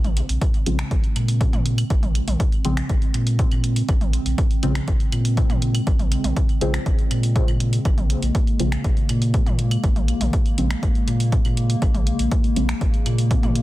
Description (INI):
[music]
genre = dub techno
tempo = 121 BPM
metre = 4/4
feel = straight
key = Bb minor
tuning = A4 = 439 Hz
[part]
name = warbly tape-like pad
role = sustained chords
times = 0.2-13.6 s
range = Db3 to C4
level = -28 LUFS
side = equal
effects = chorus, built-in reverb, sidechain pumping
[part]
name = warm sub bass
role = bass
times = 0.0-13.6 s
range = Bb1 to Bb2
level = -22 LUFS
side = equal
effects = sidechain pumping
[part]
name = punchy analog drum machine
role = drums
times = 0.0-13.6 s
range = finger snaps, hi-hat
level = -32 LUFS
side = right 1 dB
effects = soft clipping on snare, dub echo
[part]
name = electronic toms and claves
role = percussion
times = 0.0-13.5 s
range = none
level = -32 LUFS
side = right 1 dB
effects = sidechain pumping on toms, sidechain pumping on perc, dub echo
[part]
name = electronic kick drum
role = drums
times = 0.4-13.4 s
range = none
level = -20 LUFS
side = equal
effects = none
[part]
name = deep mellow chord stab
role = stabs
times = 0.7-12.7 s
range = Db3 to C4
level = -28 LUFS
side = equal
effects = chorus, phaser, sidechain pumping, dub echo
[sound]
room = digital ambience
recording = dense, heavily limited modern master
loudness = -18 LUFS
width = side -16 dB against mid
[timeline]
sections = 0.0-13.6 A section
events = filter sweep on synth stab 0.0-13.6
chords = 0.0 Bbm9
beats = 0.41 0.91 1.41 | 1.90 2.40 2.89 3.39 | 3.89 4.38 4.88 5.37 | 5.87 6.37 6.86 7.36 | 7.85 8.35 8.85 9.34 | 9.84 10.33 10.83 11.32 | 11.82 12.32 12.81 13.31